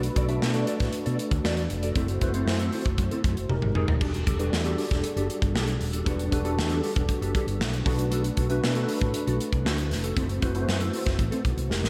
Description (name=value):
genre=polished 1980s jazz-funk pop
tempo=117 BPM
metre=4/4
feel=straight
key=E minor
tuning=A4 = 441 Hz
part: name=tine electric piano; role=accompaniment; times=0.0-11.9 s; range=G3 to B5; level=-33 LUFS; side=equal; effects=ensemble chorus, slapback echo
part: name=mellow electric guitar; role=riff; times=0.0-11.9 s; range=C4 to E5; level=-35 LUFS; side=equal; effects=ensemble chorus, slapback echo
part: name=mellow fretless electric bass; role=bass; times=0.0-11.9 s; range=Eb1 to B2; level=-31 LUFS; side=equal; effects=lush chorus
part: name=modern studio drum kit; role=drums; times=0.0-11.9 s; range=crash cymbal, hi-hat, kick drum, snare drum, toms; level=-30 LUFS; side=equal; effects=none
room=moderate lush hall reverb, RT60 1.9 s, small room ambience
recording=big arena sound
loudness=-26 LUFS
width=mono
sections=0.0-11.9 A section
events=drum fill 3.5-4.0, 11.7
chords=0.0 Bm7; 2.0 F#m7b5; 3.5 Fm11; 4.0 Em11; 7.9 Bm7; 10.2 F#m7b5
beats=0.42 0.93 1.45 | 1.96 2.47 2.98 3.50 | 4.01 4.52 5.04 5.55 | 6.06 6.58 7.09 7.60 | 8.12 8.63 9.14 9.65 | 10.17 10.68 11.19 11.70